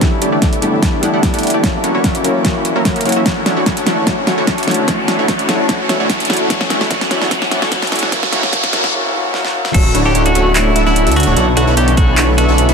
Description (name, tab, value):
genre	future bass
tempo	148 BPM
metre	4/4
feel	half-time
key	D major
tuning	A4 = 437 Hz
part	felt-muted upright piano	accompaniment	0.0-9.8 s	F#3 to C#5	-23 LUFS	left 1 dB	sidechain pumping, dub echo
part	shimmering ambient pad	sustained chords	0.0-12.7 s	D3 to D6	-26 LUFS	equal	none
part	Celtic harp	arpeggios	0.0-12.7 s	B3 to F#5	-23 LUFS	left 7 dB	sidechain pumping, low-pass filter, dub echo
part	supersaw stab	riff	0.0-12.7 s	A3 to F#5	-17 LUFS	right 1 dB	sidechain pumping, low-pass filter, dub echo
part	electronic kick drum	drums	0.0-12.1 s	none	-17 LUFS	equal	overdrive
part	pop drum kit	drums	0.0-12.7 s	crash cymbal, handclaps, hi-hat, snare drum	-18 LUFS	equal	overdrive
part	riser	sound effects	0.0-8.9 s	none	-22 LUFS	equal	none
part	clean electric guitar	melody	9.7-12.7 s	E4 to A4	-19 LUFS	equal	warbly pitch drift, sidechain pumping, dub echo
part	airy dreamy lead	arpeggios	9.7-12.7 s	C#6 to E6	-25 LUFS	equal	chorus, cassette tape, sidechain pumping, dub echo
part	wide detuned saw bass	bass	9.7-12.7 s	D1 to D2	-14 LUFS	equal	chorus, sidechain pumping
room	moderate shimmer reverb, RT60 6.1 s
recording	dense, heavily limited modern master, high-pass filter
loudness	-12 LUFS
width	side -5 dB against mid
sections	0.0-9.7 A section; 9.7-12.7 B section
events	build-up 0.0-9.7; drum fill 0.0-8.9, 9.3-9.7; riser 0.0-8.9; filter sweep on supersaw synth 0.0-9.7; filter sweep 0.0-9.7; break 8.9-9.7; drop 9.7-12.7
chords	0.0 A7sus4; 1.6 F#7; 3.3 Dmaj9; 4.9 Bm11; 6.5 A7sus4; 8.1 F#7; 9.7 Dmaj9; 11.4 Bm11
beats	| 0.01 0.42 0.83 1.23 | 1.64 2.04 2.45 2.85 | 3.26 3.66 4.07 4.47 | 4.88 5.29 5.69 6.10 | 6.50 6.91 7.31 7.72 | 8.12 8.53 8.93 9.34 | 9.74 10.15 10.56 10.96 | 11.37 11.77 12.18 12.58